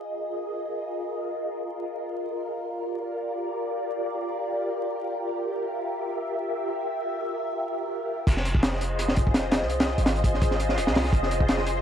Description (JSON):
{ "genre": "drum and bass, jungle", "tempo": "168 BPM", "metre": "4/4", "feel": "swing 55% on 16ths", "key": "F dorian", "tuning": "A4 = 440 Hz", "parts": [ { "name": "soft string machine", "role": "sustained chords", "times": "0.0-11.8 s", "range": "F4 to E5", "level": "-28 LUFS", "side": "equal", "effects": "phaser, ensemble chorus, vintage 12-bit sampler grit" }, { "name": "warm 808-style bass", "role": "bass", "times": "8.3-11.8 s", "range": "Eb1 to C2", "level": "-28 LUFS", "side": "equal", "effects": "tube saturation" }, { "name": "crunchy breakbeat drum kit", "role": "drums", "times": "8.3-11.8 s", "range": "crash cymbal, hi-hat, kick drum, snare drum", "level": "-23 LUFS", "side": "equal", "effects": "none" } ], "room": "light reverb, small room ambience", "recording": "dry, gritty hardware recording, vinyl crackle", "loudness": "-25 LUFS", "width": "side -9 dB against mid", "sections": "0.0-8.3 A section; 8.3-11.8 B section", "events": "filter sweep on string machine 0.0-8.3; drop 8.3-11.8", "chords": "0.0 Fm7; 2.6 Gm7; 8.3 Fm7", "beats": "0.06 0.42 0.78 | 1.13 1.49 1.85 2.20 | 2.56 2.92 3.27 3.63 | 3.99 4.35 4.70 5.06 | 5.42 5.78 6.13 6.49 | 6.85 7.20 7.56 7.92 | 8.28 8.63 8.99 9.35 | 9.70 10.06 10.42 10.78 | 11.13 11.49" }